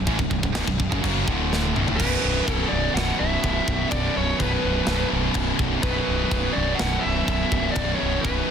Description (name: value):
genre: heavy metal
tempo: 125 BPM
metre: 4/4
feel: straight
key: B minor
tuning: A4 = 444 Hz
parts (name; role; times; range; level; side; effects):
- distorted electric guitar; riff; 0.0-8.5 s; B1 to F#3; -27 LUFS; left 15 dB; overdrive
- heavy high-gain guitar; riff; 0.0-8.5 s; B1 to F#3; -27 LUFS; right 12 dB; distortion
- fuzz fingered electric bass; bass; 0.0-8.4 s; B0 to A1; -27 LUFS; equal; overdrive
- tight metal drum kit; drums; 0.1-8.4 s; china cymbal, crash cymbal, kick drum, snare drum, toms; -27 LUFS; equal; soft clipping on kick
- dark smooth lead guitar; melody; 2.0-8.5 s; B4 to F#5; -27 LUFS; equal; overdrive, digital delay
room: little or no reverb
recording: dense, heavily limited modern master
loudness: -20 LUFS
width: side -8 dB against mid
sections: 0.0-2.0 A section; 2.0-8.5 B section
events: drum fill 1.5-2.0; half time 2.0-8.5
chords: 0.0 B5; 1.3 D5; 1.7 Bm; 2.0 B5